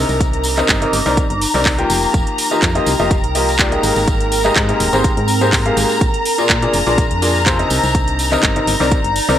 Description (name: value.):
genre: piano house.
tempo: 124 BPM.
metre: 4/4.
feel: straight.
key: C minor.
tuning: A4 = 439 Hz.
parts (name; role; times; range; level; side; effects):
warm studio violin section; sustained chords; 0.0-9.4 s; Bb5; -21 LUFS; left 2 dB; sidechain pumping.
clear grand piano; riff; 0.0-9.4 s; Ab2 to G5; -18 LUFS; left 1 dB; sidechain pumping, analog delay.
solid FM bass; bass; 0.0-9.4 s; Eb1 to Bb2; -21 LUFS; equal; sidechain pumping.
warbly tape-like pad; texture; 0.0-9.4 s; C4 to D6; -22 LUFS; right 1 dB; chorus, built-in reverb, sidechain pumping.
house drum kit; drums; 0.1-9.3 s; handclaps, hi-hat; -20 LUFS; right 1 dB; none.
tambourine; percussion; 0.1-9.4 s; none; -27 LUFS; equal; none.
electronic kick drum; drums; 0.2-9.0 s; none; -18 LUFS; equal; none.
room: light reverb, digital ambience.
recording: dry, gritty hardware recording.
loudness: -13 LUFS.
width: side -10 dB against mid.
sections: 0.0-9.4 A section.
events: none.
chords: 0.0 Cm9; 1.9 F9sus4; 3.8 Abmaj9; 6.0 Bb7; 7.7 Cm9.